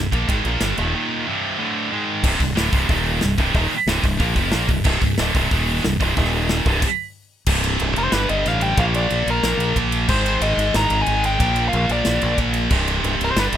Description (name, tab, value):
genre	heavy metal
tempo	184 BPM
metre	4/4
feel	straight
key	C minor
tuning	A4 = 440 Hz
part	heavy high-gain guitar	riff	0.0-13.6 s	C2 to Bb3	-20 LUFS	right 1 dB	distortion
part	growling fingered electric bass	bass	0.0-13.6 s	C1 to Bb1	-23 LUFS	equal	overdrive
part	modern studio drum kit	drums	0.1-13.6 s	crash cymbal, hi-hat, kick drum, ride cymbal, snare drum	-24 LUFS	equal	none
part	nasal lead guitar with a parked wah	melody	8.0-13.4 s	Bb4 to Bb5	-23 LUFS	left 2 dB	overdrive
room	little or no reverb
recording	rough home demo mix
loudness	-17 LUFS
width	side -10 dB against mid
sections	0.0-2.2 A section; 2.2-7.5 B section; 7.5-13.6 C section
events	break 0.9-2.2; stop 6.8-7.5; half time 7.5-13.6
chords	0.0 Cm; 0.9 Eb5; 1.3 C5; 1.6 D5; 1.9 Ab5; 2.2 C5; 2.9 Eb5; 3.2 Cm; 5.5 Eb5; 5.8 C5; 6.2 Eb5; 6.7 C5; 7.1 N.C.; 7.5 C5; 8.1 G5; 8.8 Bb; 10.1 Ab; 11.4 Bb; 12.7 C5